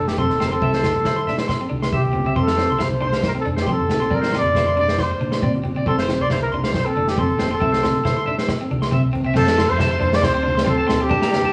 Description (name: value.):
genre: highlife guitar band.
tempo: 137 BPM.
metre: 4/4.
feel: straight.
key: F major.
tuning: A4 = 440 Hz.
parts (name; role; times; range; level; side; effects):
breathy trumpet; melody; 0.0-11.5 s; G4 to D5; -24 LUFS; equal; analog delay.
electric guitar at the edge of break-up; accompaniment; 0.0-11.4 s; C4 to E4; -29 LUFS; equal; spring reverb.
fingered electric bass; bass; 0.0-11.5 s; F1 to F3; -28 LUFS; equal; none.
electric guitar at the edge of break-up; arpeggios; 0.1-11.5 s; C5 to C6; -29 LUFS; equal; none.
vintage drum kit; drums; 0.1-11.4 s; crash cymbal, kick drum, snare drum; -26 LUFS; equal; none.
congas; percussion; 0.3-11.4 s; none; -30 LUFS; equal; none.
bright tonewheel organ; sustained chords; 9.4-11.5 s; Bb3 to A4; -34 LUFS; equal; none.
room: wet studio reverb, RT60 0.6 s.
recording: band playing live in one room, studio reverb.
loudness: -20 LUFS.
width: mono.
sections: 0.0-9.4 A section; 9.4-11.5 B section.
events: none.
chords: 0.0 F; 0.6 C6; 2.4 F; 4.1 Bbadd9; 5.9 F5; 7.6 C6; 9.4 F.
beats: 0.18 | 0.62 1.05 1.49 1.93 | 2.37 2.80 3.24 3.68 | 4.12 4.55 4.99 5.43 | 5.87 6.30 6.74 7.18 | 7.61 8.05 8.49 8.92 | 9.36 9.80 10.23 10.67 | 11.11.